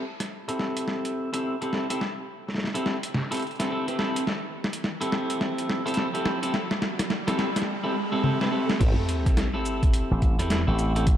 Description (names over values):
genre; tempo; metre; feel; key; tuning
glitch hop; 106 BPM; 4/4; swing 61% on 16ths; A minor; A4 = 440 Hz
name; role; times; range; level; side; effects
electric guitar at the edge of break-up; stabs; 0.0-11.1 s; C4 to B4; -28 LUFS; equal; sidechain pumping, low-pass filter, dub echo
riser and sub drop; sound effects; 0.0-11.1 s; none; -34 LUFS; right 1 dB; none
boom bap sampler-style drum kit; drums; 0.2-11.2 s; crash cymbal, hi-hat, rim click, shaker, snare drum, toms; -29 LUFS; equal; studio reverb
formant-sweep wobble bass; bass; 8.8-8.9 s; A1; -25 LUFS; equal; chorus, tube saturation
electronic kick drum; drums; 8.8-11.2 s; none; -22 LUFS; equal; studio reverb
slap bass with an envelope filter; bass; 10.1-11.2 s; A1 to E2; -24 LUFS; equal; none
room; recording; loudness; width
moderate lush hall reverb, RT60 2.0 s; dark, warm production; -24 LUFS; side -11 dB against mid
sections
0.0-8.8 A section; 8.8-11.2 B section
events
build-up 0.0-8.8; drum fill 0.0-7.7, 8.2-8.8; riser 0.0-8.8; filter sweep on clean electric guitar 0.0-8.8; drop 8.8-11.2; impact 8.8-11.1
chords
0.0 Am7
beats
0.31 0.88 1.45 | 2.01 2.58 3.14 3.71 | 4.28 4.84 5.41 5.97 | 6.54 7.11 7.67 8.24 | 8.80 9.37 9.94 10.50 | 11.07